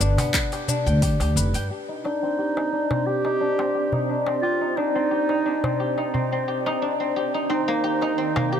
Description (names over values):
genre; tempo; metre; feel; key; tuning
organic downtempo; 88 BPM; 4/4; swing 53% on 16ths; C minor; A4 = 440 Hz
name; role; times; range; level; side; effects
guzheng; arpeggios; 0.0-8.6 s; Bb3 to G5; -25 LUFS; left 3 dB; low-pass filter, ping-pong delay
upright bass; bass; 0.0-1.7 s; F1 to G2; -21 LUFS; equal; tube saturation, sidechain pumping
deep house drum kit; drums; 0.0-1.7 s; handclaps, hi-hat, shaker; -28 LUFS; left 2 dB; overdrive
darbuka; percussion; 0.2-8.5 s; none; -29 LUFS; equal; none
electronic kick drum; drums; 0.3-1.2 s; none; -26 LUFS; equal; overdrive
ethereal airy pad; sustained chords; 2.7-8.6 s; Eb3 to G5; -29 LUFS; right 2 dB; ensemble chorus, built-in reverb, sidechain pumping
breathy clarinet; melody; 2.0-8.6 s; Eb4 to G4; -27 LUFS; right 4 dB; ping-pong delay
room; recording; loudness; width
light reverb, studio reverb; none; -21 LUFS; side -8 dB against mid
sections
0.0-1.7 A section; 1.7-8.6 B section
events
filter sweep on guzheng 1.7-8.6; filter sweep on ambient pad 1.7-8.6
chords
0.0 G; 1.7 Cmadd9; 7.2 Eb6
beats
0.34 1.02 | 1.71 2.39 3.07 3.75 | 4.43 5.11 5.80 6.48 | 7.16 7.84 8.52